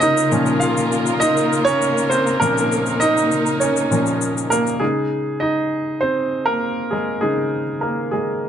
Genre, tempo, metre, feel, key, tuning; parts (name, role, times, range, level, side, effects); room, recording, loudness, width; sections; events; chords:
piano-driven pop; 100 BPM; 4/4; straight; A4 = 442 Hz
clear baby grand piano; accompaniment; 0.0-8.5 s; Bb2 to F5; -18 LUFS; right 1 dB
warm studio string section; sustained chords; 0.0-4.8 s; Db3 to Bb4; -22 LUFS; left 1 dB
egg shaker; percussion; 0.0-4.8 s; -28 LUFS; left 13 dB
moderate large studio reverb, RT60 0.9 s; nothing above 10.4 kHz; -17 LUFS; side -9 dB against mid
0.0-4.8 A section; 4.8-8.5 B section
grand piano solo 0.0-4.8, 4.8-8.5
0.0 Bbm; 4.8 Dbsus2